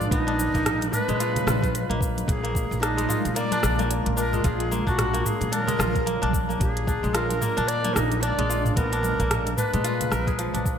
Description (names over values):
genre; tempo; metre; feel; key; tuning
organic downtempo; 111 BPM; 4/4; swing 58% on 16ths; Bb phrygian dominant; A4 = 440 Hz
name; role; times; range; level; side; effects
bright reedy low Native American-style wooden flute; melody; 0.0-10.6 s; Eb4 to D5; -28 LUFS; equal; digital delay
granular cloud pad; sustained chords; 0.0-10.8 s; Eb3 to Cb6; -32 LUFS; equal; built-in reverb, analog chorus, sidechain pumping
kora; arpeggios; 0.0-10.8 s; F3 to Bb4; -29 LUFS; left 1 dB; ping-pong delay
upright bass; bass; 0.0-10.8 s; Bb1 to Bb2; -28 LUFS; equal; none
organic electronic drum kit; drums; 0.0-10.8 s; cabasa, hi-hat, rim click, toms; -29 LUFS; equal; gated reverb
electronic kick drum; drums; 0.1-10.8 s; none; -27 LUFS; equal; none
congas; percussion; 0.4-10.6 s; none; -36 LUFS; right 3 dB; none
room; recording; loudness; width
moderate lush hall reverb, RT60 1.9 s, studio reverb; bright 1980s-style digital production; -22 LUFS; side -8 dB against mid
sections
0.0-10.8 A section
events
none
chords
0.1 Abm7/Bb; 2.3 Bb7; 4.4 Ebmadd9/Bb; 6.6 Bb7; 8.8 Abm/Bb